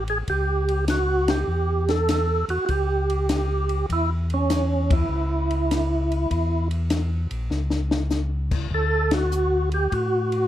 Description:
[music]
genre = soul jazz organ trio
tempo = 100 BPM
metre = 4/4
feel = swing 67% on 8ths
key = A mixolydian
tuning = A4 = 441 Hz
[part]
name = percussive tonewheel organ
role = melody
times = 0.0-10.5 s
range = C#4 to A4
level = -24 LUFS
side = right 2 dB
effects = slow rotary speaker, overdrive, chorus vibrato, plate reverb
[part]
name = mellow tonewheel organ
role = bass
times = 0.0-10.5 s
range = A1 to A2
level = -24 LUFS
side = equal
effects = slow rotary speaker
[part]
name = compact cocktail drum kit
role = drums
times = 0.1-10.4 s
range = crash cymbal, hi-hat, kick drum, ride cymbal, snare drum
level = -27 LUFS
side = left 2 dB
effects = none
[sound]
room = light reverb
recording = none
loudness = -21 LUFS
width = side -12 dB against mid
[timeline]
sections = 0.0-10.5 A section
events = band accent 1.2-1.5, 4.8-5.1, 9.0-9.3; drum fill 7.5-8.1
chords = 0.0 A7 (rootless); 8.7 D

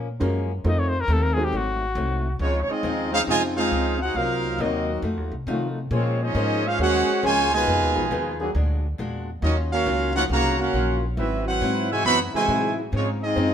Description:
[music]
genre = jazz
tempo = 137 BPM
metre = 4/4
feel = swing 66% on 8ths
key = Db major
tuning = A4 = 442 Hz
[part]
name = picked old ladder-braced acoustic guitar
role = accompaniment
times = 0.0-13.5 s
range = F2 to C5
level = -30 LUFS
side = left 4 dB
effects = none
[part]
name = upright bass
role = bass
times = 0.0-13.5 s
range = Ab1 to C3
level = -26 LUFS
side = equal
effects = none
[part]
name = warm baby grand piano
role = accompaniment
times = 0.2-1.5 s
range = Ab3 to Bb4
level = -28 LUFS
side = right 2 dB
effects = none
[part]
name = warm trumpet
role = melody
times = 0.7-2.4 s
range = Gb4 to Eb5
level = -26 LUFS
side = left 3 dB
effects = none
[part]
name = bright trumpet section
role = melody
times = 2.4-13.5 s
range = Ab3 to B5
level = -23 LUFS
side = right 2 dB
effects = none
[part]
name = clear trombone section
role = second line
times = 2.4-13.5 s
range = Cb3 to Gb4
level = -27 LUFS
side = equal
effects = none
[part]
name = warm trombone section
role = sustained chords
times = 3.1-13.5 s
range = Db3 to C5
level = -31 LUFS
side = left 2 dB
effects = none
[sound]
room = moderate echo chamber reverb, RT60 1.3 s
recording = none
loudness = -21 LUFS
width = side -9 dB against mid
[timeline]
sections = 0.0-2.4 A section; 2.4-13.5 B section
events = trumpet solo 0.0-2.4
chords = 0.0 Gbmaj7; 0.6 F7; 1.5 Ab7b9; 2.4 Dbmaj9; 4.2 Cm7b5; 5.0 F7b9; 5.9 Bbm9; 7.7 Fm7b5; 8.5 Bbaug7; 9.4 Ebm9; 11.2 Ab7alt; 12.9 Dbmaj9

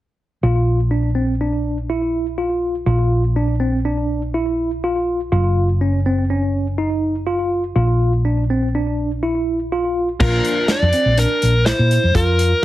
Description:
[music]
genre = progressive instrumental, band music in an uneven meter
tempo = 123 BPM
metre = 5/4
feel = straight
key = Bb lydian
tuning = A4 = 441 Hz
[part]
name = tine electric piano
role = arpeggios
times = 0.4-12.5 s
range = C4 to F4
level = -20 LUFS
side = equal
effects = medium stereo tremolo, slapback echo
[part]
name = hollow-body short-scale fingered electric bass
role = bass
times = 0.4-12.5 s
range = Gb1 to Bb2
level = -19 LUFS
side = equal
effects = none
[part]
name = fuzz lead guitar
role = melody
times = 10.2-12.6 s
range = Bb4 to D5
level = -18 LUFS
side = equal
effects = distortion
[part]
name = dark analog pad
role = accompaniment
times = 10.3-12.6 s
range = F3 to F4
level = -28 LUFS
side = left 2 dB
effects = chorus, phaser
[part]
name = warm soul drum kit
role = drums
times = 10.2-12.5 s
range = crash cymbal, hi-hat, kick drum, snare drum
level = -22 LUFS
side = equal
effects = none
[sound]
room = light reverb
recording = heavily compressed radio sound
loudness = -16 LUFS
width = side -15 dB against mid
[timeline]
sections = 0.4-10.2 A section; 10.2-12.6 B section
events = none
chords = 0.4 Bb; 5.3 Gb5; 7.8 Bb

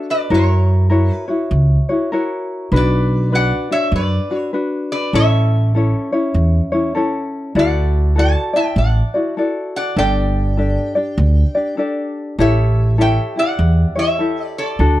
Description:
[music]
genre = Hawaiian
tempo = 99 BPM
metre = 4/4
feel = swing 62% on 8ths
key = unclear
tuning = A4 = 440 Hz
[part]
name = lap resonator guitar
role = melody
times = 0.0-15.0 s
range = A4 to A5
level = -21 LUFS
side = equal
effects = none
[part]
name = tenor ukulele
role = accompaniment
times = 0.0-15.0 s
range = C#4 to D5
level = -19 LUFS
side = left 2 dB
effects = none
[part]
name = upright bass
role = bass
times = 0.3-15.0 s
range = G1 to F#2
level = -15 LUFS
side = right 1 dB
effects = none
[sound]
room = small room ambience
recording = dry, close 1970s-style studio recording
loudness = -14 LUFS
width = side -14 dB against mid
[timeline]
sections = 0.0-15.0 A section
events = none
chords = 0.3 F#7; 2.7 Bm; 5.1 A; 7.6 Dadd9; 10.0 Gsus2; 12.4 A7

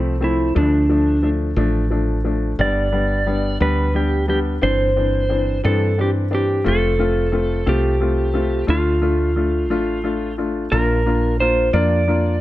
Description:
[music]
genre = pop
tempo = 59 BPM (dotted quarters)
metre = 6/8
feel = straight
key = unclear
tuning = A4 = 440 Hz
[part]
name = warm upright piano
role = accompaniment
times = 0.0-12.3 s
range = E3 to F4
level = -21 LUFS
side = left 3 dB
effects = none
[part]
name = woody fretless electric bass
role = bass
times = 0.0-12.4 s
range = F1 to G2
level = -20 LUFS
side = right 1 dB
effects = analog chorus
[part]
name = clean lap steel guitar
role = melody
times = 0.2-12.4 s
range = D4 to D5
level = -20 LUFS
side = right 1 dB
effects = none
[sound]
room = little or no reverb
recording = none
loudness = -16 LUFS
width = side -15 dB against mid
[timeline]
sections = 0.0-10.7 A section; 10.7-12.4 B section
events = none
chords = 0.0 F; 0.6 Dm; 2.6 G; 4.6 Cadd9/G; 6.7 F; 8.7 Dm; 10.7 Bb

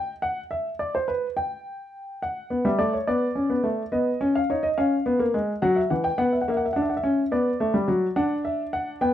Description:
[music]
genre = classical, baroque-style 3-part fugue for grand piano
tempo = 71 BPM (dotted quarters)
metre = 12/8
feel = straight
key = unclear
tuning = A4 = 442 Hz
[part]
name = warm baby grand piano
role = solo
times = 0.0-9.1 s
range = E3 to G5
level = -22 LUFS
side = equal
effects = none
[sound]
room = light reverb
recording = dark, warm production, nothing above 10.7 kHz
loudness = -22 LUFS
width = side -11 dB against mid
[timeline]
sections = 0.0-9.1 A section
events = none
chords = 0.0 N.C.; 2.2 Bm; 3.9 C#7/B; 5.6 F#7(no3); 7.3 Bm (rootless)

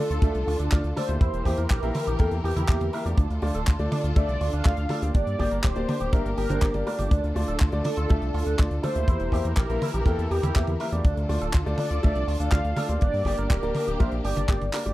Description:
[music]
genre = italo disco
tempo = 122 BPM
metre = 4/4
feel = straight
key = D minor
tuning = A4 = 440 Hz
[part]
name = mellow synth brass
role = melody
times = 0.0-14.7 s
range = G4 to F5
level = -31 LUFS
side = equal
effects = chorus, tape echo
[part]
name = rich symphonic string section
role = sustained chords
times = 0.0-14.9 s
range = D3 to Bb4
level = -34 LUFS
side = left 1 dB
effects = vintage 12-bit sampler grit
[part]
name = electric guitar with an envelope filter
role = arpeggios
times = 0.0-14.9 s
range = D4 to Bb4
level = -36 LUFS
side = right 3 dB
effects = warbly pitch drift, tape echo
[part]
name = round analog bass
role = bass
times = 0.1-14.9 s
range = D1 to G2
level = -27 LUFS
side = equal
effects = tube saturation
[part]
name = tight funk drum kit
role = drums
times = 0.1-14.9 s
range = handclaps, hi-hat, toms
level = -32 LUFS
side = right 1 dB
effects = studio ambience
[part]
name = warm baby grand piano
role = stabs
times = 0.2-14.9 s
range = A3 to G5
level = -32 LUFS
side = equal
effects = none
[part]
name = kick drum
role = drums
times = 0.2-14.6 s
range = none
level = -21 LUFS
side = equal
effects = studio ambience
[sound]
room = little or no reverb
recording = dry, close 1970s-style studio recording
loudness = -22 LUFS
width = side -16 dB against mid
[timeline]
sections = 0.0-14.9 A section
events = drum fill 14.7; band accent 14.7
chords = 0.0 Dm; 1.2 Edim; 3.2 Dm; 9.1 Edim; 11.0 Dm; 13.0 Gm

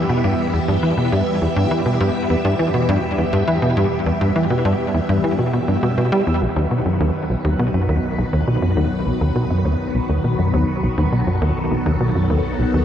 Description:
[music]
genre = ambient, sequencer-driven space music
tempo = 102 BPM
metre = 4/4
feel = straight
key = E harmonic minor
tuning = A4 = 442 Hz
[part]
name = phased string machine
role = sustained chords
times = 0.0-12.8 s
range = D#3 to E5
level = -21 LUFS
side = equal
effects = ensemble chorus, phaser
[part]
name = tight sequencer bass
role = riff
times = 0.0-12.8 s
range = B1 to G3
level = -18 LUFS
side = equal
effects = analog chorus, tape echo
[part]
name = analog drone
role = bass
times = 0.0-12.8 s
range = B1 to E2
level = -32 LUFS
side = equal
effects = none
[sound]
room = moderate huge ambient reverb, RT60 9.4 s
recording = dark, warm production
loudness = -16 LUFS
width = side -9 dB against mid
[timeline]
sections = 0.0-12.8 A section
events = none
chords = 0.0 Em; 6.4 B

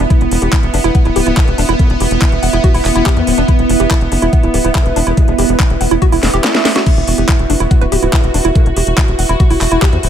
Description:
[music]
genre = psychedelic trance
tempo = 142 BPM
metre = 4/4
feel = straight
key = unclear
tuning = A4 = 440 Hz
[part]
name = evolving wavetable pad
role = sustained chords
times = 0.0-10.1 s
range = B3 to F#4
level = -19 LUFS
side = right 1 dB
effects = ensemble chorus, built-in reverb, tremolo, sidechain pumping
[part]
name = woody wave-folded pluck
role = riff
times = 0.0-9.9 s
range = D4 to F#5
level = -19 LUFS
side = moving between left 5 dB and right 3 dB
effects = chorus, auto-pan, vintage 12-bit sampler grit, sidechain pumping, ping-pong delay
[part]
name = tight sequencer bass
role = bass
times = 0.0-10.1 s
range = D1 to E2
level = -16 LUFS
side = equal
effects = none
[part]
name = garage drum kit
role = drums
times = 0.0-10.1 s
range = crash cymbal, handclaps, hi-hat, snare drum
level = -19 LUFS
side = equal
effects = studio reverb
[part]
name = warbly tape-like pad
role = texture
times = 0.0-10.1 s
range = E4 to E5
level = -20 LUFS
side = right 5 dB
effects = chorus, built-in reverb, sidechain pumping
[part]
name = electronic kick drum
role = drums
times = 0.1-9.9 s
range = none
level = -11 LUFS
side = equal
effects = studio reverb
[part]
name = vowel-sweep wobble bass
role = second line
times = 1.2-10.1 s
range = G3 to B3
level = -27 LUFS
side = left 5 dB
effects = lush chorus, sidechain pumping, high-pass filter, ping-pong delay
[part]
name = swell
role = sound effects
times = 6.2-6.9 s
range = none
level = -24 LUFS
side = left 1 dB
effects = none
[sound]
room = digital ambience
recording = none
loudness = -10 LUFS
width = side -9 dB against mid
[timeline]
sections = 0.0-10.1 A section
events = swell 6.2-6.9; drum fill 6.2-6.9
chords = 0.0 E5

